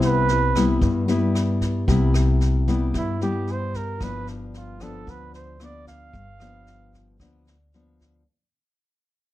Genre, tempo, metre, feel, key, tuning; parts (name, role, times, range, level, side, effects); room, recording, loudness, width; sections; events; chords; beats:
bossa nova; 113 BPM; 4/4; straight; A4 = 439 Hz
nylon-string guitar; accompaniment; 0.0-8.2 s; G2 to E4; -23 LUFS; left 3 dB
upright bass; bass; 0.0-8.2 s; G1 to G2; -24 LUFS; equal
jazz brush drum kit; drums; 0.0-8.1 s; kick drum, rim click, snare drum; -29 LUFS; equal
warm flugelhorn; melody; 0.1-7.2 s; D4 to F5; -28 LUFS; right 6 dB
moderate studio reverb, RT60 0.8 s; -19 LUFS; side -14 dB against mid
0.0-8.3 A section
fade-out 0.0-8.3; flugelhorn solo 0.0-8.3
0.0 Cmaj7; 4.0 G7
0.28 0.81 1.35 | 1.88 2.41 2.94 3.47 | 4.00 4.54 5.07 5.60 | 6.13 6.66 7.20 7.73